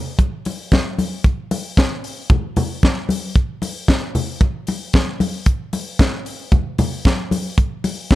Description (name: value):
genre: disco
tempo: 114 BPM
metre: 4/4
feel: straight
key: none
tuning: none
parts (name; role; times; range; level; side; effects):
- tight funk drum kit; drums; 0.2-8.2 s; handclaps, hi-hat, kick drum, snare drum; -18 LUFS; equal; none
- congas; percussion; 0.2-8.2 s; none; -22 LUFS; left 2 dB; none
room: light reverb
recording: dark, warm production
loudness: -17 LUFS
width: side -16 dB against mid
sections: 0.0-8.2 A section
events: none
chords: none